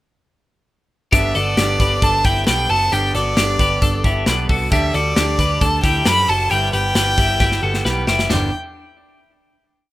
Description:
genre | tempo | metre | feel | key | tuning
jangly indie pop | 134 BPM | 4/4 | straight | G major | A4 = 440 Hz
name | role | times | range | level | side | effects
warm violin | melody | 1.1-8.5 s | D5 to B5 | -20 LUFS | equal | none
electric guitar through a small old amp | accompaniment | 1.1-8.5 s | G2 to A4 | -28 LUFS | right 4 dB | spring reverb
twelve-string electric guitar | arpeggios | 1.1-8.5 s | D4 to B4 | -20 LUFS | left 3 dB | none
vintage muted picked electric bass | bass | 1.1-8.5 s | F#1 to F#2 | -21 LUFS | equal | none
modern studio drum kit | drums | 1.1-8.4 s | china cymbal, hi-hat, kick drum, snare drum, toms | -20 LUFS | equal | none
room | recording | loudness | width
little or no reverb | rough home demo mix | -14 LUFS | side -16 dB against mid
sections
1.1-8.3 chorus; 8.3-9.9 final chord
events
drum fill 7.4-8.3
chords
1.1 Gadd9; 4.7 G6; 8.3 G5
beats
| 1.13 1.58 2.03 2.48 | 2.92 3.37 3.82 4.27 | 4.72 5.17 5.61 6.06 | 6.51 6.96 7.41 7.85 | 8.30

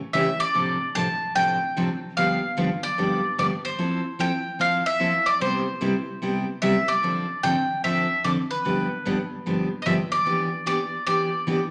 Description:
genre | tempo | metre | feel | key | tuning
country | 148 BPM | 4/4 | swing 64% on 8ths | unclear | A4 = 440 Hz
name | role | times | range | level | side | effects
bowl-back mandolin | melody | 0.0-11.7 s | B4 to A5 | -26 LUFS | equal | none
picked steel-string acoustic guitar | accompaniment | 0.1-11.6 s | G2 to A4 | -28 LUFS | equal | none
room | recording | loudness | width
wet large studio reverb, RT60 1.3 s | none | -24 LUFS | mono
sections
0.0-11.7 A section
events
none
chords
0.0 A7; 0.5 Dm7/A; 2.2 G7; 3.8 Fmaj9; 5.4 Cmaj7; 7.0 Dm7; 8.6 G7; 10.3 Em7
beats
0.14 | 0.55 0.95 1.36 1.76 | 2.17 2.57 2.98 3.38 | 3.79 4.19 4.60 5.00 | 5.41 5.81 6.22 6.62 | 7.03 7.43 7.84 8.24 | 8.65 9.05 9.46 9.86 | 10.26 10.67 11.07 11.47

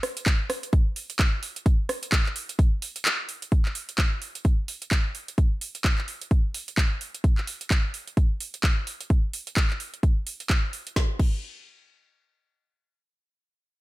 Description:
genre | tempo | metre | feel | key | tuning
house | 129 BPM | 4/4 | swing 58% on 16ths | none | none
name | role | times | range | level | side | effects
garage drum kit | drums | 0.0-11.3 s | crash cymbal, handclaps, hi-hat, rim click, snare drum | -28 LUFS | right 1 dB | overdrive
electronic kick drum | drums | 0.3-11.3 s | none | -21 LUFS | equal | none
room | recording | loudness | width
little or no reverb | none | -23 LUFS | side -19 dB against mid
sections
0.0-3.5 A section; 3.5-11.0 B section; 11.0-12.8 C section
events
drop 0.0-3.5; kick drops out 3.1-3.5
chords
none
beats
0.26 0.73 1.19 | 1.66 2.12 2.59 3.06 | 3.52 3.98 4.45 4.92 | 5.38 5.84 6.31 6.78 | 7.24 7.71 8.17 8.64 | 9.10 9.57 10.03 10.50 | 10.96

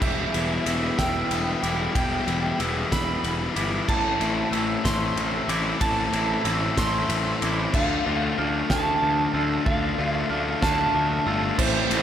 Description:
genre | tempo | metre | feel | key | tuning
post-rock | 62 BPM (dotted quarters) | 6/8 | straight | unclear | A4 = 441 Hz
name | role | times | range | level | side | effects
electric slide guitar | melody | 0.0-12.0 s | C5 to C6 | -28 LUFS | right 3 dB | slapback echo
glockenspiel with rubber mallets | arpeggios | 0.0-12.0 s | D6 to A6 | -34 LUFS | right 5 dB | slapback echo
twangy electric guitar | arpeggios | 0.0-12.0 s | E2 to F4 | -33 LUFS | equal | slapback echo
sludgy distorted guitar | riff | 0.0-12.0 s | A2 to F4 | -26 LUFS | left 4 dB | overdrive, slapback echo
fuzz picked electric bass | bass | 0.0-12.0 s | E1 to D2 | -29 LUFS | equal | overdrive
loose indie drum kit | drums | 0.0-12.0 s | crash cymbal, kick drum, ride cymbal, snare drum | -28 LUFS | equal | none
distorted electric guitar | riff | 11.6-12.0 s | A2 to E4 | -27 LUFS | right 11 dB | overdrive, slapback echo
room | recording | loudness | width
moderate lush hall reverb, RT60 2.3 s | big arena sound | -21 LUFS | side -9 dB against mid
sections
0.0-11.6 A section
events
build-up 0.0-11.6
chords
0.0 Em; 3.9 Am; 7.7 Dm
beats
| 0.02 0.99 | 1.95 2.92 | 3.89 4.85 | 5.82 6.78 | 7.74 8.71 | 9.67 10.63 | 11.59

